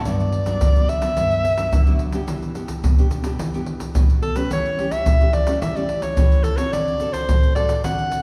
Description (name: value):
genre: samba and choro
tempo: 108 BPM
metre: 4/4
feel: straight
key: G major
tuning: A4 = 441 Hz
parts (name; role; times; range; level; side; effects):
- nylon-string guitar; accompaniment; 0.0-8.2 s; G2 to A4; -28 LUFS; equal; none
- clear soprano saxophone; melody; 0.1-8.2 s; A4 to F#5; -25 LUFS; equal; none
- tube shaker, surdo and pandeiro; percussion; 0.1-8.2 s; none; -22 LUFS; equal; none
room: wet recital hall reverb, RT60 1.6 s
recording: recorded in a church or concert hall, vinyl crackle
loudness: -20 LUFS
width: mono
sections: 0.1-8.2 A section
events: none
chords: 0.1 Gmaj7; 2.3 Em7; 4.5 A7/E; 6.7 D7